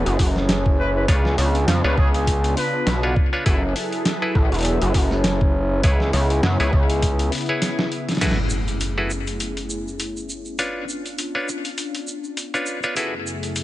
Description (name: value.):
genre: glitch hop.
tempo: 101 BPM.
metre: 4/4.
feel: swing 56% on 16ths.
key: F# minor.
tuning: A4 = 440 Hz.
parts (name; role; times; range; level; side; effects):
warm analog pad; sustained chords; 0.0-13.6 s; F#2 to B4; -28 LUFS; left 1 dB; lush chorus, sidechain pumping.
gritty driven synth bass; bass; 0.0-7.3 s; E1 to F#2; -20 LUFS; equal; distortion.
boom bap sampler-style drum kit; drums; 0.1-13.6 s; crash cymbal, hi-hat, snare drum; -25 LUFS; equal; none.
electronic kick drum; drums; 0.2-7.2 s; none; -19 LUFS; equal; none.
growling trumpet; melody; 0.8-3.0 s; G#4 to B4; -29 LUFS; left 1 dB; ping-pong delay.
clav; stabs; 1.1-13.1 s; D4 to C#5; -27 LUFS; equal; sidechain pumping, ping-pong delay.
egg shaker; percussion; 8.2-13.6 s; none; -34 LUFS; right 2 dB; none.
impact; sound effects; 8.2-10.6 s; none; -27 LUFS; equal; none.
room: little or no reverb.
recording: nothing above 10.4 kHz.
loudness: -19 LUFS.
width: side -15 dB against mid.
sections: 0.0-8.2 A section; 8.2-13.6 B section.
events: drum fill 7.6-8.2; impact 8.2-10.6.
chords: 0.0 F#m11; 1.1 C#7b9; 3.5 F#m11; 5.8 C#m7; 8.2 F#m11; 10.6 C#7b9; 13.0 F#m11.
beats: 0.49 | 1.08 1.68 2.27 2.87 | 3.46 4.06 4.65 5.24 | 5.84 6.43 7.03 7.62 | 8.21 8.81 9.40 10.00 | 10.59 11.18 11.78 12.37 | 12.97 13.56.